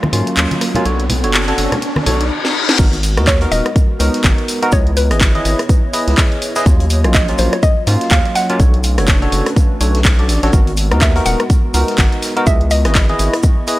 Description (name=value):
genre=deep house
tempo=124 BPM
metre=4/4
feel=swing 58% on 16ths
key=G# minor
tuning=A4 = 439 Hz
part: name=dark analog pad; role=sustained chords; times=0.0-13.8 s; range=F#3 to C#6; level=-26 LUFS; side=equal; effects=chorus, sidechain pumping
part: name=house drum kit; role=drums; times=0.0-13.8 s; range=crash cymbal, handclaps, hi-hat, rim click, snare drum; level=-19 LUFS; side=equal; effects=small room reverb
part: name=congas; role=percussion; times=0.0-2.2 s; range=none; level=-22 LUFS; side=equal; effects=sidechain pumping on perc
part: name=riser and reverse cymbal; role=sound effects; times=0.0-2.8 s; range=none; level=-20 LUFS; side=left 2 dB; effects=none
part: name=bell-like tine electric piano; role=stabs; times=0.1-13.8 s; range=F#3 to D#5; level=-20 LUFS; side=equal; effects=analog chorus, sidechain pumping, tape echo
part: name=round analog bass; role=bass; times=0.1-13.3 s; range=D#1 to G#2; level=-16 LUFS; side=equal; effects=transformer saturation, sidechain pumping
part: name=electronic kick drum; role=drums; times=2.8-13.5 s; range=none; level=-13 LUFS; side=equal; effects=small room reverb
part: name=soft-mallet drum kit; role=drums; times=2.8-13.8 s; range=hi-hat, shaker, snare drum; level=-29 LUFS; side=equal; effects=high-pass filter on hats, small room reverb, high-pass filter on snare, high-pass filter on perc, high-pass filter on room
part: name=mallet-like synth pluck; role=melody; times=3.3-13.6 s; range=B4 to F#5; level=-22 LUFS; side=equal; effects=chorus, phaser, tape echo
room=studio reverb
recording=none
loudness=-12 LUFS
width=side -17 dB against mid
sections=0.0-2.8 A section; 2.8-13.8 B section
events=build-up 0.0-2.8; riser 0.0-2.3; filter sweep on tine electric piano 0.0-2.8; reverse cymbal 1.8-2.8; drum fill 2.4-2.8; drop 2.8-13.8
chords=0.0 D#m9; 0.9 Bm9; 2.8 G#m9; 4.7 C#m9; 6.7 D#m9; 8.6 Bm9; 10.5 G#m9; 12.5 C#m9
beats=0.37 | 0.85 1.34 1.82 2.31 | 2.79 3.27 3.76 4.24 | 4.73 5.21 5.69 6.18 | 6.66 7.14 7.63 8.11 | 8.60 9.08 9.56 10.05 | 10.53 11.02 11.50 11.98 | 12.47 12.95 13.44